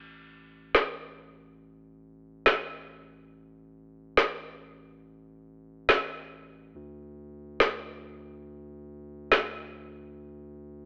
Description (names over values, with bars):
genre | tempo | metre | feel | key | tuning
deep dubstep | free time | none | none | unclear | A4 = 437 Hz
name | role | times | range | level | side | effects
soft dub sub bass | bass | 0.0-10.9 s | A1 to D2 | -50 LUFS | equal | transformer saturation
electronic snare drum | drums | 0.7-9.4 s | none | -25 LUFS | equal | low-pass filter on cymbals, studio reverb, low-pass filter on hats, low-pass filter on snare
room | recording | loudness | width
moderate echo chamber reverb, RT60 1.4 s | dry, gritty hardware recording, transformer saturation, telephone sound | -27 LUFS | mono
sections
0.0-10.9 A section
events
none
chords
none